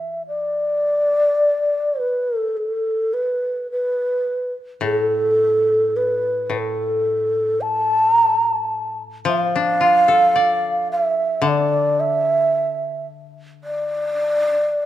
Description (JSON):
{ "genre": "japanese traditional, Japanese chamber music", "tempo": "54 BPM", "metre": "4/4", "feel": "uneven beats, rubato", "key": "D kumoi", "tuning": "A4 = 440 Hz", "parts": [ { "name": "breathy mellow long shakuhachi", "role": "melody", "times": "0.0-14.9 s", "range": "A4 to A5", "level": "-17 LUFS", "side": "equal", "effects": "none" }, { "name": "koto", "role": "accompaniment", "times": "0.0-14.7 s", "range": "A2 to D5", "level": "-25 LUFS", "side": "left 6 dB", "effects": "none" } ], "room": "moderate recital hall reverb, RT60 1.7 s", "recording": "none", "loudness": "-17 LUFS", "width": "side -12 dB against mid", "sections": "0.3-14.9 A section", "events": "none", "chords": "none" }